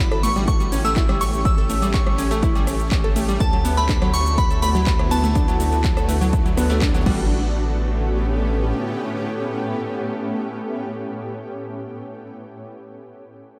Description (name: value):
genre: progressive house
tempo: 123 BPM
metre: 4/4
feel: straight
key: A mixolydian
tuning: A4 = 440 Hz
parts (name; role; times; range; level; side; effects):
- glassy synth bell; melody; 0.0-6.8 s; A5 to E6; -28 LUFS; equal; chorus, phaser, sidechain pumping, delay
- glassy wavetable pluck; second line; 0.0-6.8 s; A5 to E6; -35 LUFS; equal; chorus, sidechain pumping, diffuse ambient delay
- shimmering ambient pad; sustained chords; 0.0-11.7 s; A2 to G4; -29 LUFS; equal; chorus, built-in reverb, sidechain pumping
- round analog bass; bass; 0.0-8.7 s; A1 to D2; -25 LUFS; equal; sidechain pumping
- crunchy breakbeat drum kit; drums; 0.0-7.1 s; hi-hat, snare drum; -41 LUFS; equal; none
- house drum kit; drums; 0.0-7.2 s; crash cymbal, handclaps, hi-hat, ride cymbal, rim click, shaker; -34 LUFS; equal; overdrive
- glassy wavetable pluck; arpeggios; 0.1-7.5 s; F#3 to A4; -28 LUFS; equal; chorus, sidechain pumping, diffuse ambient delay
- electronic kick drum; drums; 0.5-7.2 s; none; -23 LUFS; equal; overdrive
room: moderate huge ambient reverb, RT60 4.0 s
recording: dreamy mix soaked in reverb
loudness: -20 LUFS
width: mono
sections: 0.0-7.3 A section; 7.3-11.2 B section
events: drop 0.0-7.3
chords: 0.0 A7; 3.4 D6; 7.1 A7